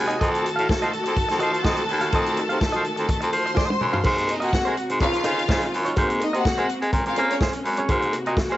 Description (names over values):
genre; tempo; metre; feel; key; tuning
disco; 125 BPM; 4/4; straight; unclear; A4 = 440 Hz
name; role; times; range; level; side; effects
clear studio string section; second line; 0.0-7.4 s; Db4 to C6; -27 LUFS; left 1 dB; cassette tape, plate reverb
clear studio string section; sustained chords; 0.0-8.6 s; C3 to Gb4; -30 LUFS; left 1 dB; cassette tape
raspy baritone saxophone; bass; 0.0-8.6 s; Db2 to Bb3; -24 LUFS; equal; none
clean electric guitar; accompaniment; 0.1-8.6 s; Db4 to F5; -28 LUFS; right 3 dB; harmonic tremolo, cassette tape, plate reverb
vintage drum kit; drums; 0.1-8.6 s; crash cymbal, hi-hat, kick drum, snare drum, toms; -25 LUFS; equal; cassette tape
cowbell; percussion; 0.2-8.5 s; none; -35 LUFS; left 3 dB; none
room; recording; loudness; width
light reverb; home recording on cassette, nothing above 7.9 kHz; -20 LUFS; side -15 dB against mid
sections
0.0-4.1 A section; 4.1-8.6 B section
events
drum fill 3.6-4.1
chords
0.2 F7b9; 4.1 Ab9; 5.0 Dbmaj9; 6.0 Ab9; 6.9 Bbm9; 7.9 Ab9